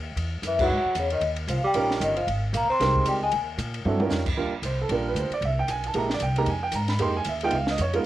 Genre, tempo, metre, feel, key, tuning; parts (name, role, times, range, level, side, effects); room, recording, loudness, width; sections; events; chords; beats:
jazz, small-group swing and bop; 229 BPM; 4/4; swing 59% on 8ths; Eb major from 4.4 s; A4 = 440 Hz
upright bass; bass; 0.0-8.0 s; G1 to Bb2; -28 LUFS; equal
compact cocktail drum kit; drums; 0.2-8.0 s; crash cymbal, hi-hat, kick drum, ride cymbal, snare drum, toms; -32 LUFS; equal; cassette tape
vibraphone with soft mallets; melody; 0.5-3.3 s; Db5 to C6; -25 LUFS; left 2 dB; cassette tape
warm tenor saxophone; second line; 0.5-3.3 s; Db3 to C4; -29 LUFS; right 3 dB; cassette tape
warm upright piano; accompaniment; 0.6-8.1 s; Gb3 to C6; -26 LUFS; right 4 dB; cassette tape
light reverb; home recording on cassette; -23 LUFS; side -14 dB against mid
0.0-4.4 A section; 4.4-8.1 B section
band accent 0.6; drum fill 3.9
0.2 Eadd9; 1.2 Eb7; 2.3 Abmaj7; 3.3 Eb7; 4.4 Ebmaj9; 5.4 C7b13; 6.5 Fm11; 7.5 Db9
| 0.18 0.44 0.70 0.96 | 1.23 1.49 1.75 2.01 | 2.28 2.54 2.80 3.06 | 3.33 3.59 3.85 4.11 | 4.38 4.64 4.90 5.16 | 5.42 5.69 5.95 6.21 | 6.48 6.74 7.00 7.26 | 7.53 7.79 8.05